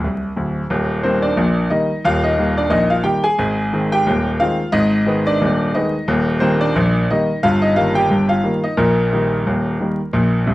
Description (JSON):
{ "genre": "ragtime piano", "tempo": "89 BPM", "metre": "2/4", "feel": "swing 58% on 16ths", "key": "Eb major", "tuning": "A4 = 443 Hz", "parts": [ { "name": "clear grand piano", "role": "solo", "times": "0.0-10.5 s", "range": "D1 to Ab5", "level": "-15 LUFS", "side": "equal", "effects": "none" } ], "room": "moderate studio reverb, RT60 0.9 s", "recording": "dark, warm production, vinyl crackle", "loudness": "-15 LUFS", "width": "side -17 dB against mid", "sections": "0.7-10.5 A section", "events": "grand piano fill 0.0-0.7", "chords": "0.0 N.C.; 0.7 Eb; 3.4 Ab; 4.7 Abm; 6.1 Eb; 7.4 Eb/G; 8.8 Eb/Bb" }